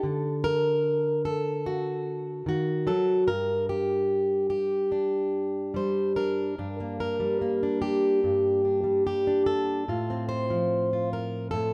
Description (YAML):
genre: folk, solo fingerstyle acoustic guitar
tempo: 73 BPM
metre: 4/4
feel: straight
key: G minor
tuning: A4 = 440 Hz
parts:
  - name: fingerpicked plugged-in steel-string acoustic guitar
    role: solo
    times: 0.0-11.7 s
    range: G2 to C5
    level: -27 LUFS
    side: equal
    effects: none
room: little or no reverb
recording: close, detailed microphones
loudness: -27 LUFS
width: mono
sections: 0.0-6.6 A section; 6.6-11.7 B section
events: none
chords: 0.0 D; 3.3 G5; 6.6 Gm; 9.9 F/A